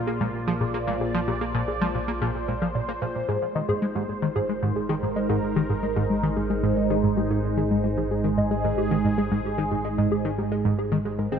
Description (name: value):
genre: ambient, sequencer-driven space music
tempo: 112 BPM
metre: 4/4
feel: straight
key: Ab lydian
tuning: A4 = 440 Hz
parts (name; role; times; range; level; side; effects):
- phased analog pad; sustained chords; 0.0-11.4 s; Ab3 to D5; -27 LUFS; right 2 dB; phaser, chorus
- fat analog bass; bass; 0.0-11.4 s; Ab1 to Bb1; -32 LUFS; equal; tube saturation
- warbly dusty pluck; arpeggios; 0.1-11.4 s; Ab3 to Eb5; -31 LUFS; left 1 dB; chorus, auto-pan, analog delay
- tight sequenced synth; riff; 0.1-11.4 s; Ab2 to C4; -27 LUFS; equal; chorus, analog delay
room: moderate plate reverb, RT60 3.4 s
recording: echo-heavy mix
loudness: -22 LUFS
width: side -7 dB against mid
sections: 0.0-11.4 A section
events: none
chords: 0.0 Bbadd9; 3.3 Ab6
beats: 0.07 0.61 | 1.14 1.68 2.21 2.75 | 3.29 3.82 4.36 4.89 | 5.43 5.96 6.50 7.04 | 7.57 8.11 8.64 9.18 | 9.71 10.25 10.79 11.32